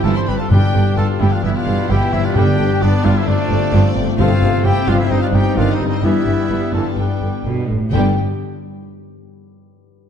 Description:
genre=cinematic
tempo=130 BPM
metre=4/4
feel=straight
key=G mixolydian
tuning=A4 = 441 Hz
part: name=rich symphonic violin section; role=melody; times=0.0-8.2 s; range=D5 to C6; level=-31 LUFS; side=left 6 dB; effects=none
part: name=clear symphonic violin section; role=second line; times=0.0-8.2 s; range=G3 to E4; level=-28 LUFS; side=left 4 dB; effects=none
part: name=mellow cor anglais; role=second line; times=0.0-8.1 s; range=A3 to A4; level=-29 LUFS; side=right 2 dB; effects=none
part: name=mellow hollow silver concert flute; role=second line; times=0.0-8.2 s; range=D5 to C6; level=-28 LUFS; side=left 3 dB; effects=none
part: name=clear symphonic viola section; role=accompaniment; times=0.0-8.2 s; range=C3 to A3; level=-26 LUFS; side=equal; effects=none
part: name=warm French horn section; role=sustained chords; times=0.0-8.1 s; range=B3 to G4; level=-25 LUFS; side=left 4 dB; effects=none
part: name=warm trombone section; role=sustained chords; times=0.0-8.1 s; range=G2 to A3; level=-27 LUFS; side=right 4 dB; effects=none
part: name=concert harp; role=arpeggios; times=0.0-8.2 s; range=G2 to D5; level=-24 LUFS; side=left 9 dB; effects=none
part: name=warm trumpet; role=stabs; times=0.0-8.1 s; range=D4 to C5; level=-24 LUFS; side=right 1 dB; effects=none
part: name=rich symphonic double bass section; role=bass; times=0.0-8.2 s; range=G1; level=-21 LUFS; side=right 3 dB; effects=none
part: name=timpani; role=percussion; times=0.0-4.8, 7.9-8.2 s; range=G2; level=-21 LUFS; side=equal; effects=none
part: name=clear studio cello section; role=bass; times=0.1-8.2 s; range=G2 to B2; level=-20 LUFS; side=right 1 dB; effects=none
room=moderate scoring stage reverb, RT60 1.5 s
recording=dark, warm production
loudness=-14 LUFS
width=side -8 dB against mid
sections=0.0-7.9 A section; 7.9-9.8 B section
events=none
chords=0.0 C/G; 0.5 G; 1.4 Em/G; 2.4 G; 3.3 Dm7/G; 4.2 F/G; 5.1 Cm/G; 6.0 Em/G; 7.0 G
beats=0.04 | 0.51 0.97 1.44 1.90 | 2.35 2.81 3.27 3.73 | 4.19 4.64 5.10 5.56 | 6.03 6.50 6.97 7.46 | 7.93

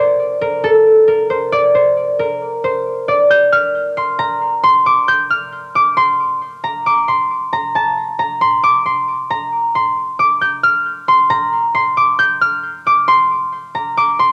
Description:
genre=hip hop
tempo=135 BPM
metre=4/4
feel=half-time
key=unclear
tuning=A4 = 438 Hz
part: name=concert harp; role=solo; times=0.0-14.3 s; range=A4 to G6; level=-15 LUFS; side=equal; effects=cassette tape
room=light reverb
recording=home recording on cassette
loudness=-15 LUFS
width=mono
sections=0.0-3.3 A section; 3.3-14.3 B section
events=none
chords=none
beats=0.19 0.64 1.08 | 1.52 1.97 2.41 2.86 | 3.30 3.75 4.19 4.64 | 5.08 5.53 5.97 6.41 | 6.86 7.30 7.75 8.19 | 8.64 9.08 9.53 9.97 | 10.41 10.86 11.30 11.75 | 12.19 12.64 13.08 13.53 | 13.97

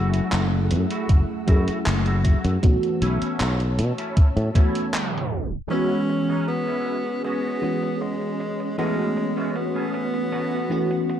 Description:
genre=vaporwave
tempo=78 BPM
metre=4/4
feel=straight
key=E major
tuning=A4 = 440 Hz
part: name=FM electric piano with soft pad layer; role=accompaniment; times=0.0-11.2 s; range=E3 to G#4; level=-26 LUFS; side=equal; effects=phaser, analog chorus, cassette tape, tape echo
part: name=soft string machine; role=sustained chords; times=0.0-11.2 s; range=A3 to E6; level=-32 LUFS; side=equal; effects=ensemble chorus
part: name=clean electric guitar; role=riff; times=0.0-10.9 s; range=G#3 to G#4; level=-34 LUFS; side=right 1 dB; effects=ensemble chorus, low-pass filter, tape echo
part: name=sustaining fretless electric bass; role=bass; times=0.0-5.4 s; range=F#1 to B2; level=-22 LUFS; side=equal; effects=none
part: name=gated 80s digital drum machine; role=drums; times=0.1-11.2 s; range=handclaps, hi-hat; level=-32 LUFS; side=equal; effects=gated reverb, low-pass filter on hats, low-pass filter on snare, low-pass filter on room
part: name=electronic kick drum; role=drums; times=1.1-4.7 s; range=none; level=-16 LUFS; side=equal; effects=none
part: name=mellow tenor saxophone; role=melody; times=5.7-11.2 s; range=G#3 to C#4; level=-27 LUFS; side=equal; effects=tape echo
room=light reverb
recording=dark, warm production, tape stop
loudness=-20 LUFS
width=side -10 dB against mid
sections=0.0-5.7 A section; 5.7-11.2 B section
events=tape stop 4.9-5.7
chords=0.0 F#m7; 2.6 B9sus4; 5.7 E6; 8.8 A69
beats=0.33 1.09 1.86 | 2.63 3.40 4.17 4.94 | 5.71 6.48 7.25 8.02 | 8.79 9.56 10.33 11.10

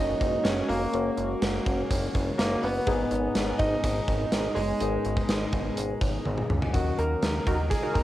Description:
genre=1980s-style pop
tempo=124 BPM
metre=4/4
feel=straight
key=unclear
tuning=A4 = 440 Hz
part: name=clear concert grand piano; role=melody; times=0.0-8.0 s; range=G#3 to A#4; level=-30 LUFS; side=right 1 dB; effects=cassette tape, analog delay
part: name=direct-recorded clean electric guitar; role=second line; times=0.0-8.0 s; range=F#3 to D#5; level=-42 LUFS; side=left 5 dB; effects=none
part: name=FM electric piano with auto-pan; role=accompaniment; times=0.0-8.0 s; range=G#2 to A#5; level=-35 LUFS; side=left 6 dB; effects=cassette tape
part: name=phased analog pad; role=sustained chords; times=0.0-8.0 s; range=B2 to F#4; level=-38 LUFS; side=equal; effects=none
part: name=funky polysynth comp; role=stabs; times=0.0-7.9 s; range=A#3 to A#4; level=-34 LUFS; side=equal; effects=chorus, cassette tape, analog delay
part: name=chorused synth bass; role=bass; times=0.0-8.0 s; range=E#1 to D#2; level=-30 LUFS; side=equal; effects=none
part: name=gated 80s drum kit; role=drums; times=0.2-8.0 s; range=hi-hat, kick drum, snare drum, tambourine, toms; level=-28 LUFS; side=equal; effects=none
room=moderate spring reverb, RT60 2.5 s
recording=home recording on cassette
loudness=-24 LUFS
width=side -14 dB against mid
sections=0.0-6.7 A section; 6.7-8.0 B section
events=drum fill 6.3-6.7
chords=0.0 F#add9; 2.9 G#madd9; 6.7 D#m7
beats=0.45 | 0.94 1.42 1.90 2.39 | 2.87 3.35 3.84 4.32 | 4.81 5.29 5.77 6.26 | 6.74 7.23 7.71

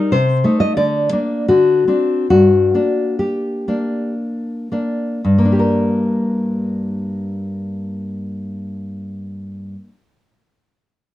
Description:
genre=romantic piece for solo classical guitar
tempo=54-98 BPM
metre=3/4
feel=rubato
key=G minor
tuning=A4 = 440 Hz
part: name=nylon-string guitar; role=solo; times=0.0-10.1 s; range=G2 to Eb5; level=-16 LUFS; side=left 1 dB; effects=none
room=light reverb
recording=dark, warm production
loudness=-15 LUFS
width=side -14 dB against mid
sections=0.0-5.2 A section; 5.2-11.1 B section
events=slowing down 0.0-5.2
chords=0.1 Adim/C; 0.8 Bb/D; 1.5 D7; 2.3 Gm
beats=| 0.14 0.78 1.49 | 2.30 3.20 4.18 | 5.24 6.25 7.26 | 8.26 9.25

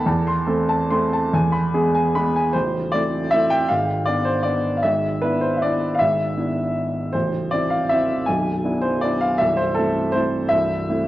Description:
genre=classical, piano waltz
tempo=137-169 BPM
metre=3/4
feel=rubato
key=A minor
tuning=A4 = 440 Hz
part: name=warm baby grand piano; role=solo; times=0.0-11.1 s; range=A0 to C6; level=-18 LUFS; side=equal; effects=none
room=moderate recital hall reverb, RT60 1.6 s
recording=worn, warbling old tape, cassette tape, warbly pitch drift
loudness=-18 LUFS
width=side -15 dB against mid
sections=0.0-2.5 A section; 2.5-11.1 B section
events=none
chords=0.1 Am/E; 1.3 E; 2.5 Am; 3.7 G#dim7; 4.8 E7/G#; 7.1 Am; 8.3 E7/B; 9.4 Am/C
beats=| 0.06 0.47 0.90 | 1.32 1.73 2.15 | 2.54 2.92 3.32 | 3.70 4.08 4.46 | 4.84 5.22 5.62 | 6.00 6.37 6.76 | 7.14 7.52 7.90 | 8.27 8.63 9.03 | 9.40 9.77 10.15 | 10.52 10.88

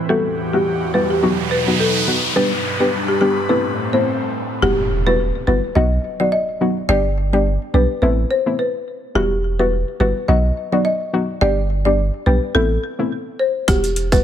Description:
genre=dancehall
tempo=106 BPM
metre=4/4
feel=swing 56% on 16ths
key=E minor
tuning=A4 = 443 Hz
part: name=airy breathy pad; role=sustained chords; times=0.0-4.6 s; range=E2 to B4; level=-24 LUFS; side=right 1 dB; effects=chorus, sidechain pumping, low-pass filter
part: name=downlifter, noise sweep and impact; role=sound effects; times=0.0-6.9 s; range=none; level=-24 LUFS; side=right 1 dB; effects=none
part: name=folk marimba with medium mallets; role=melody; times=0.1-14.2 s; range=G4 to D#5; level=-20 LUFS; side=left 1 dB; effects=low-pass filter, ping-pong delay
part: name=soft round pluck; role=accompaniment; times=0.1-14.2 s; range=F#3 to G4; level=-21 LUFS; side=left 2 dB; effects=chorus, low-pass filter
part: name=punchy sub bass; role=bass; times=4.6-14.2 s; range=E1 to B1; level=-19 LUFS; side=right 1 dB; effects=none
part: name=island pop drum kit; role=drums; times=13.7-14.2 s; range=hi-hat, kick drum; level=-17 LUFS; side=right 1 dB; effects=none
part: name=maracas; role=percussion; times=13.7-14.2 s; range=none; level=-31 LUFS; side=right 8 dB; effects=none
room=light reverb, digital ambience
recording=none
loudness=-16 LUFS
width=side -10 dB against mid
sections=0.0-4.6 A section; 4.6-14.2 B section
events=noise sweep 0.5-4.6; impact 4.6-6.9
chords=0.1 Emadd9; 1.2 B; 2.4 G; 3.5 Amadd9; 4.6 Emadd9; 5.8 B; 6.9 G; 8.0 Amadd9; 9.2 Emadd9; 10.3 B; 11.4 G; 12.5 Amadd9; 13.7 Emadd9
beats=| 0.10 0.66 1.23 1.79 | 2.36 2.93 3.49 4.06 | 4.62 5.19 5.76 6.32 | 6.89 7.45 8.02 8.59 | 9.15 9.72 10.28 10.85 | 11.42 11.98 12.55 13.11 | 13.68

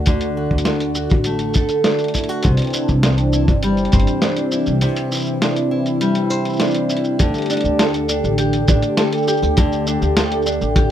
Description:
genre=folktronica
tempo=101 BPM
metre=4/4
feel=straight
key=unclear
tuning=A4 = 442 Hz
part: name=warm analog pad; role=sustained chords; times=0.0-10.9 s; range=D3 to G4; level=-21 LUFS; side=left 1 dB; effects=chorus
part: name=nylon-string guitar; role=arpeggios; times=0.0-10.9 s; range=C3 to C5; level=-21 LUFS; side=right 1 dB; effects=digital delay
part: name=upright bass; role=bass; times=0.0-10.9 s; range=G1 to D2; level=-20 LUFS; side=equal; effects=none
part: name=kick drum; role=drums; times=0.1-10.9 s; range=none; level=-16 LUFS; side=equal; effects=none
part: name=lo-fi sampler-style drum kit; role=drums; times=0.1-10.9 s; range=hi-hat, shaker, snare drum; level=-22 LUFS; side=equal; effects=none
room=light reverb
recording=rough home demo mix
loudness=-15 LUFS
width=side -10 dB against mid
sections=0.0-7.2 A section; 7.2-10.9 B section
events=break 4.8-7.2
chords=0.0 D; 2.4 Cadd9; 7.2 Dsus4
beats=| 0.07 0.66 1.25 1.85 | 2.44 3.04 3.63 4.23 | 4.82 5.41 6.01 6.60 | 7.20 7.79 8.38 8.98 | 9.57 10.17 10.76

